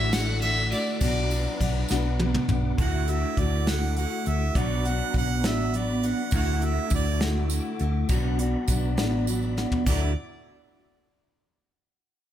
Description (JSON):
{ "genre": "folk rock and heartland rock", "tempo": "68 BPM (dotted quarters)", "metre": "6/8", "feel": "straight", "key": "D major", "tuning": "A4 = 439 Hz", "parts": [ { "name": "rich fiddle", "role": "melody", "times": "0.0-1.6 s", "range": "D5 to F#5", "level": "-29 LUFS", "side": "equal", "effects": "tape echo" }, { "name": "picked steel-string acoustic guitar", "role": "accompaniment", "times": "0.0-10.1 s", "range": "B2 to F#4", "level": "-33 LUFS", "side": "left 7 dB", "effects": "none" }, { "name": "tonewheel organ", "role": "sustained chords", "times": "0.0-10.1 s", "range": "F#4 to E6", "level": "-42 LUFS", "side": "equal", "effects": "slow rotary speaker, chorus vibrato" }, { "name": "electric guitar through a small old amp", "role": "riff", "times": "0.0-10.1 s", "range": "B2 to F#4", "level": "-30 LUFS", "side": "right 1 dB", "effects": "ensemble chorus" }, { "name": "hollow-body short-scale fingered electric bass", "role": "bass", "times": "0.0-10.1 s", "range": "A1 to D2", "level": "-27 LUFS", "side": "equal", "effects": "none" }, { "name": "soft brush drum kit", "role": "drums", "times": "0.1-10.0 s", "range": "crash cymbal, hi-hat, kick drum, ride cymbal, snare drum, toms", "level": "-28 LUFS", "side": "equal", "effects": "none" }, { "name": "tambourine", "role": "percussion", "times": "0.1-2.6, 6.3-10.1 s", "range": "none", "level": "-39 LUFS", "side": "right 6 dB", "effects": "none" }, { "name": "clear harmonica", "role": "second line", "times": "2.8-10.1 s", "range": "D5 to F#5", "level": "-32 LUFS", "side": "right 7 dB", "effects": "none" } ], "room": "little or no reverb", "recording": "none", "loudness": "-23 LUFS", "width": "side -11 dB against mid", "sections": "0.0-2.8 A section; 2.8-9.9 B section; 9.9-11.6 C section", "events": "drum fill 1.9-2.8, 9.6; harmonica solo 2.8-9.9", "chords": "0.0 Dadd9; 1.0 Bm; 2.8 Dadd9; 4.6 Bm; 6.3 Dadd9; 8.1 Bm; 9.9 Dadd9", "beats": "0.13 | 1.02 1.90 | 2.79 3.67 | 4.56 5.44 | 6.33 7.21 | 8.10 8.98 | 9.86" }